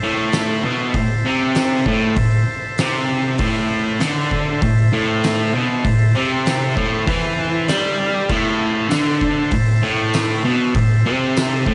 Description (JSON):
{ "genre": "garage rock duo or trio", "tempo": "98 BPM", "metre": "4/4", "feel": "straight", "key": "A minor", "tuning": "A4 = 440 Hz", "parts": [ { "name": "combo organ", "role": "sustained chords", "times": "0.0-11.7 s", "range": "A4 to E5", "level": "-27 LUFS", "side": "equal", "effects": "subtle chorus, cassette tape" }, { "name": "fuzz guitar", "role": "riff", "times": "0.0-11.7 s", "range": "A2 to G3", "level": "-19 LUFS", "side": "equal", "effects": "distortion, cassette tape" }, { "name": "oversized low-tuned drum kit", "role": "drums", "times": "0.3-11.7 s", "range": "crash cymbal, hi-hat, kick drum, snare drum", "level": "-26 LUFS", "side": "equal", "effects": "cassette tape" }, { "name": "tambourine", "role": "percussion", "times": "0.3-11.5 s", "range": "none", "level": "-35 LUFS", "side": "equal", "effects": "none" } ], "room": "light reverb, small room reverb", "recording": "home recording on cassette, nothing above 10.8 kHz", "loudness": "-18 LUFS", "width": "mono", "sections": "0.0-11.7 A section", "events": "none", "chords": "0.0 Am", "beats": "0.34 | 0.95 1.56 2.18 2.79 | 3.40 4.02 4.63 5.24 | 5.86 6.47 7.08 7.70 | 8.31 8.92 9.53 10.14 | 10.76 11.37" }